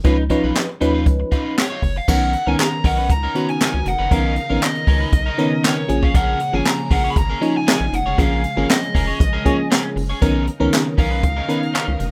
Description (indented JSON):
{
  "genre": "early-eighties boogie funk",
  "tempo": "118 BPM",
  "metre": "4/4",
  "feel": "straight",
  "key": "unclear",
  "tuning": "A4 = 440 Hz",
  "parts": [
    { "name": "FM electric piano", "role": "accompaniment", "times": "0.0-12.1 s", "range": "D#3 to B4", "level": "-24 LUFS", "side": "equal", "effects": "chorus" },
    { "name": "electric guitar at the edge of break-up", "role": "riff", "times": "0.0-12.0 s", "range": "C#4 to C#5", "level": "-30 LUFS", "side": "equal", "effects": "subtle chorus" },
    { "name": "rubbery square bass", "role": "bass", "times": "0.0-12.1 s", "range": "E#1 to D#2", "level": "-24 LUFS", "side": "equal", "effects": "none" },
    { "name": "jazz brush drum kit", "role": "drums", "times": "0.0-12.1 s", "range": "crash cymbal, handclaps, hi-hat, kick drum, snare drum", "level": "-21 LUFS", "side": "equal", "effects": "none" },
    { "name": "dark smooth lead guitar", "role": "melody", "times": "1.6-12.1 s", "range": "C#5 to B5", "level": "-26 LUFS", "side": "equal", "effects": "overdrive" },
    { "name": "string machine, full ensemble", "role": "sustained chords", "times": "2.1-12.1 s", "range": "C#3 to A#4", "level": "-33 LUFS", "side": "equal", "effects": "ensemble chorus" }
  ],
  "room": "moderate small room reverb, RT60 0.5 s",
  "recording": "rough home demo mix",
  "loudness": "-18 LUFS",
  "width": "mono",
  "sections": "0.0-2.1 A section; 2.1-12.1 B section",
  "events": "none",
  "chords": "0.0 C#9; 2.1 Bmaj9; 5.9 A#m7; 10.2 Bmaj9"
}